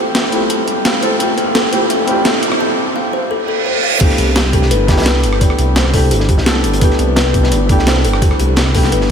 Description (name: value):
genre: liquid drum and bass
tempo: 171 BPM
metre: 4/4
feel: straight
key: unclear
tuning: A4 = 439 Hz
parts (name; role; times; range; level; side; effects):
- felt-muted upright piano; accompaniment; 0.0-9.1 s; A3 to A4; -17 LUFS; equal; analog delay
- riser and reverse cymbal; sound effects; 0.4-4.0 s; none; -22 LUFS; right 4 dB; none
- kalimba; arpeggios; 0.1-9.1 s; G4 to A5; -20 LUFS; left 4 dB; ping-pong delay
- breakbeat sampler-style drum kit; drums; 0.1-9.0 s; crash cymbal, hi-hat, rim click, snare drum; -18 LUFS; equal; none
- crunchy breakbeat drum kit; drums; 4.0-9.1 s; hi-hat, snare drum; -24 LUFS; equal; high-pass filter on hats, high-pass filter on snare, high-pass filter on room
- electronic kick drum; drums; 4.0-8.8 s; none; -14 LUFS; equal; none
- dark detuned saw bass; bass; 4.2-9.1 s; G1 to C2; -15 LUFS; equal; none
room: moderate huge ambient reverb, RT60 6.4 s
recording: dreamy mix soaked in reverb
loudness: -11 LUFS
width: side -7 dB against mid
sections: 0.0-4.0 A section; 4.0-9.1 B section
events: build-up 0.0-4.0; riser 0.4-2.6; break 2.6-4.0; reverse cymbal 3.5-4.0; drop 4.0-9.1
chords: 0.0 Fmaj7; 4.0 Cmaj13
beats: 0.15 0.50 0.85 | 1.20 1.55 1.90 2.25 | 2.61 2.96 3.31 3.66 | 4.01 4.36 4.71 5.06 | 5.41 5.76 6.11 6.46 | 6.82 7.17 7.52 7.87 | 8.22 8.57 8.92